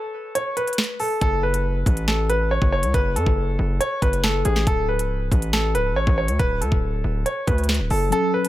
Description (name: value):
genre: hip hop, drill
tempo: 139 BPM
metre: 4/4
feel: half-time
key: unclear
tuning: A4 = 436 Hz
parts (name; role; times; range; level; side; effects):
- clear concert grand piano; melody; 0.0-8.5 s; G#4 to C#5; -23 LUFS; equal; low-pass filter, ping-pong delay
- drill drum kit; drums; 0.4-8.5 s; hi-hat, kick drum, snare drum; -22 LUFS; equal; none
- distorted 808-style bass; bass; 1.2-8.1 s; C#1 to F#2; -22 LUFS; equal; distortion
- mellow tine electric piano; accompaniment; 8.1-8.5 s; F#3 to A4; -22 LUFS; left 1 dB; medium stereo tremolo, low-pass filter
room: little or no reverb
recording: none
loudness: -19 LUFS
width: side -14 dB against mid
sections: 0.0-8.5 A section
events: break 0.0-1.2; kick muted 8.1-8.5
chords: 0.0 N.C.; 1.2 F#m; 4.7 D5